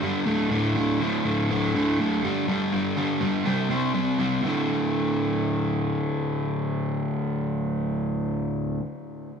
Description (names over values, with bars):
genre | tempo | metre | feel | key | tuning
rock | 122 BPM | 4/4 | straight | unclear | A4 = 435 Hz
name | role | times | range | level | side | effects
overdriven semi-hollow guitar | solo | 0.0-8.8 s | D2 to C4 | -23 LUFS | equal | tape echo
room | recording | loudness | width
wet large studio reverb, RT60 0.8 s | band playing live in one room | -23 LUFS | side -6 dB against mid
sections
0.0-4.4 A section; 4.4-8.4 B section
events
none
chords
0.3 D5; 2.2 G5; 3.5 C5; 4.4 D5